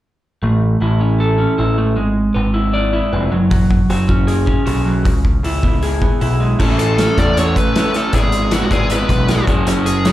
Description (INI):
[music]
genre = indie rock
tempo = 156 BPM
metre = 4/4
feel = straight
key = A major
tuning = A4 = 440 Hz
[part]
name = electric guitar through a small old amp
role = riff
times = 0.4-10.1 s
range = C#3 to D5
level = -17 LUFS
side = right 1 dB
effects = slapback echo
[part]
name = growling picked electric bass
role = bass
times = 0.4-10.1 s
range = F1 to E2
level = -17 LUFS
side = equal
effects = overdrive
[part]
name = loose indie drum kit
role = drums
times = 3.5-10.1 s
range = crash cymbal, hi-hat, kick drum, snare drum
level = -18 LUFS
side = equal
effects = none
[part]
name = dark smooth lead guitar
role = melody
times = 6.8-10.1 s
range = F#4 to D5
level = -20 LUFS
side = left 2 dB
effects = overdrive, slapback echo
[sound]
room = little or no reverb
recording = live gig heard through the venue's PA, club reverb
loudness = -13 LUFS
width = side -14 dB against mid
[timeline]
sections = 0.4-6.6 A section; 6.6-10.1 B section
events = none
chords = 0.4 A; 2.0 E7/G#; 3.3 F#sus2; 5.1 C#m7; 6.6 A; 8.1 E7/G#; 9.5 F#sus2